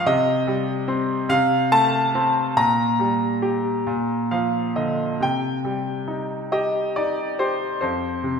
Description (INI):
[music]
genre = classical, lyrical solo piano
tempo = 46 BPM (dotted quarters)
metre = 6/8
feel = uneven beats, rubato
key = C minor from 5.2 s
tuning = A4 = 442 Hz
[part]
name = bright concert grand piano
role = solo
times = 0.0-8.4 s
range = F2 to Bb5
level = -20 LUFS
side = equal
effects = none
[sound]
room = wet scoring stage reverb, RT60 1.9 s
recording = minimal, uncompressed stereo recording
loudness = -20 LUFS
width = side -6 dB against mid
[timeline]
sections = 0.0-5.2 A section; 5.2-8.4 B section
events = grand piano fill 3.9-5.2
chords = 0.1 Cm; 1.3 F/C; 2.6 Gm/Bb; 3.9 Bb; 5.2 Cm; 7.8 F5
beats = | 0.07 1.31 | 2.57 3.88 | 5.21 6.54 | 7.82